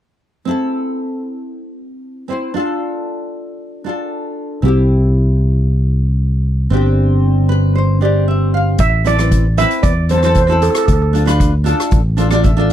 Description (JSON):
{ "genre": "calypso", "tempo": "115 BPM", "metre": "4/4", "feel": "straight", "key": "A minor", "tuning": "A4 = 440 Hz", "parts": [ { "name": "nylon-string guitar", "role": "accompaniment", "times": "0.5-12.7 s", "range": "C4 to F5", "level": "-19 LUFS", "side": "equal", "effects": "double-tracked left and right" }, { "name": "fingered electric bass", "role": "bass", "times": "4.6-12.7 s", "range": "G1 to E2", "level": "-14 LUFS", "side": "equal", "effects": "none" }, { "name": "steel pan", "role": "melody", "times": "8.8-11.1 s", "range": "A4 to E5", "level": "-17 LUFS", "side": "right 4 dB", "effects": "slapback echo" }, { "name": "street-band drum kit", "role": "drums", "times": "8.8-12.7 s", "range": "hi-hat, kick drum, rim click", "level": "-17 LUFS", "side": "equal", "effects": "none" } ], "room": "little or no reverb", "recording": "dry, close 1970s-style studio recording", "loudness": "-12 LUFS", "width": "side -11 dB against mid", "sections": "0.5-8.8 A section; 8.8-12.7 B section", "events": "nylon-string guitar fill 7.2-8.8, 11.9-12.7", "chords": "0.5 Am; 2.5 Dm; 4.6 C; 6.7 Gsus4; 8.8 Amadd9; 10.9 Dm", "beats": "| 0.47 0.98 1.51 2.03 | 2.55 3.07 3.59 4.11 | 4.63 5.15 5.67 6.19 | 6.71 7.23 7.75 8.27 | 8.79 9.31 9.84 10.36 | 10.88 11.40 11.92 12.44" }